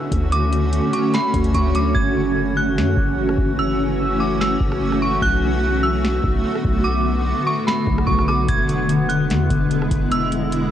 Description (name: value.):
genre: hip hop, atmospheric cloud-rap.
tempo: 147 BPM.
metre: 4/4.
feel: half-time.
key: F# minor.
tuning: A4 = 441 Hz.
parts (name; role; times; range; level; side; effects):
dark detuned synth bell; melody; 0.0-10.7 s; B5 to G#6; -24 LUFS; right 2 dB; chorus, tremolo, low-pass filter, cassette tape, tape echo.
granular cloud pad; sustained chords; 0.0-10.7 s; D3 to F#4; -20 LUFS; equal; built-in reverb, sidechain pumping, low-pass filter, cassette tape.
long sustained 808-style bass; bass; 0.1-10.7 s; E1 to F#2; -22 LUFS; equal; none.
booming analog drum machine; drums; 0.1-10.6 s; hi-hat, kick drum, rim click, snare drum; -23 LUFS; equal; cassette tape.
room: little or no reverb.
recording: home recording on cassette.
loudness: -17 LUFS.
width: side -10 dB against mid.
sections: 0.0-2.0 A section; 2.0-10.7 B section.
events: hi-hats muted 2.0-8.5.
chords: 0.0 Dmaj7; 2.0 F#m7; 5.2 Bm7; 8.5 E7.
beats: | 0.32 0.73 1.14 1.54 | 1.95 2.36 2.77 3.18 | 3.59 3.99 4.40 4.81 | 5.22 5.63 6.04 6.44 | 6.85 7.26 7.67 8.08 | 8.48 8.89 9.30 9.71 | 10.12 10.53.